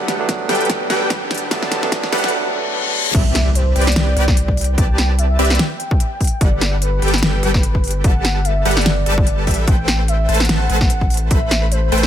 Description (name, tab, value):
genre	future bass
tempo	147 BPM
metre	4/4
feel	swing 56% on 16ths, half-time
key	G major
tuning	A4 = 440 Hz
part	barky tine electric piano	accompaniment	0.0-3.2 s	F#3 to D4	-24 LUFS	right 4 dB	overdrive, sidechain pumping, ping-pong delay
part	shimmering ambient pad	sustained chords	0.1-2.3 s	G2 to A4	-36 LUFS	equal	none
part	supersaw stab	riff	0.0-12.1 s	G3 to B5	-21 LUFS	equal	sidechain pumping, ping-pong delay
part	riser, reverse cymbal and impact	sound effects	0.8-4.8 s	none	-25 LUFS	left 2 dB	none
part	pop drum kit	drums	0.1-12.1 s	crash cymbal, hi-hat, snare drum	-21 LUFS	equal	none
part	electronic kick drum	drums	0.3-11.4 s	none	-16 LUFS	equal	none
part	warm velvety synth lead	melody	3.1-12.1 s	B4 to G5	-25 LUFS	equal	chorus, sidechain pumping, dub echo
part	saturated sub bass	bass	3.1-12.1 s	G1 to C2	-18 LUFS	equal	sidechain pumping
room	light reverb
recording	high-pass filter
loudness	-14 LUFS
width	side -10 dB against mid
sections	0.0-3.1 A section; 3.1-12.1 B section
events	build-up 0.0-3.1; drum fill 0.0-2.3; filter sweep 0.0-3.1; reverse cymbal 2.3-3.1; drop 3.1-12.1; impact 3.1-4.8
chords	0.0 Gmaj7; 3.1 Cmaj9; 6.4 Gmaj7; 9.7 Am7